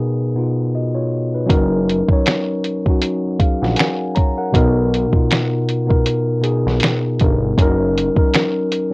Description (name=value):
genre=lo-fi hip hop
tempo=79 BPM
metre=4/4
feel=swing 57% on 16ths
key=F# major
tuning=A4 = 440 Hz
part: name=mellow tine electric piano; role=accompaniment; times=0.0-8.9 s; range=B2 to A#5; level=-17 LUFS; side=left 1 dB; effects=cassette tape
part: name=fat analog bass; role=bass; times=1.5-8.1 s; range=F#1 to B1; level=-19 LUFS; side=equal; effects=none
part: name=lo-fi sampler-style drum kit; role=drums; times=1.5-8.9 s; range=finger snaps, hi-hat, kick drum, snare drum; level=-16 LUFS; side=equal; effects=cassette tape
room=moderate booth ambience, RT60 0.2 s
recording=home recording on cassette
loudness=-14 LUFS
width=side -25 dB against mid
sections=0.0-1.5 A section; 1.5-8.9 B section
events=break 0.0-1.5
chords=0.0 Bmaj7; 1.5 F#6; 4.5 Bmaj7; 7.6 F#6